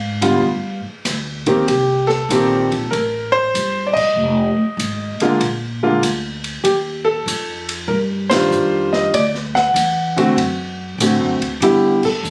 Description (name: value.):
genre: jazz piano trio.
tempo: 96 BPM.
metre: 4/4.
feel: swing 66% on 8ths.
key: unclear.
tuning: A4 = 440 Hz.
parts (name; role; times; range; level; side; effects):
warm concert grand piano; melody; 0.0-12.3 s; D3 to F#5; -19 LUFS; equal; none.
upright bass; bass; 0.0-12.3 s; F1 to A2; -26 LUFS; equal; none.
open jazz drum kit; drums; 0.2-12.3 s; crash cymbal, hi-hat, kick drum, ride cymbal, snare drum; -28 LUFS; equal; none.
room: light reverb.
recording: recorded on a phone in the room, studio reverb, compression.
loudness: -18 LUFS.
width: mono.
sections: 0.0-12.3 A section.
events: band accent 3.9-4.2, 8.2-8.5, 11.9-12.2.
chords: 0.4 G5; 1.7 Cm7; 4.2 Fm7; 5.4 Bb; 6.7 Ebmaj9; 9.1 D7; 11.6 G6.